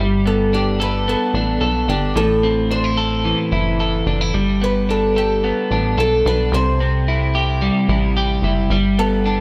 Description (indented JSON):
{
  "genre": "dream pop",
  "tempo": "110 BPM",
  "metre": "4/4",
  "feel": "straight",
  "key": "G major",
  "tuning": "A4 = 440 Hz",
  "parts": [
    { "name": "electric guitar at the edge of break-up", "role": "arpeggios", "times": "0.0-9.4 s", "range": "A2 to A4", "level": "-21 LUFS", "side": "equal", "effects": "lush chorus, tape echo" },
    { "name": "plucky analog bass", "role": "bass", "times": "0.0-9.4 s", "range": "F#1 to C2", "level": "-23 LUFS", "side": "equal", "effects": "none" },
    { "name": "oud", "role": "melody", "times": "0.3-9.4 s", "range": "G4 to C5", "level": "-24 LUFS", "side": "equal", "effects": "tape echo" }
  ],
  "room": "light reverb, small room reverb",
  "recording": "none",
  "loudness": "-18 LUFS",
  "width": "mono",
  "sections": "0.0-9.4 A section",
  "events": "none",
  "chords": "0.0 Gadd9; 2.2 Am; 4.3 Gadd9; 6.5 C; 8.7 Gadd9",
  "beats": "0.52 1.07 1.61 | 2.16 2.70 3.25 3.79 | 4.34 4.88 5.43 5.98 | 6.52 7.07 7.61 8.16 | 8.70 9.25"
}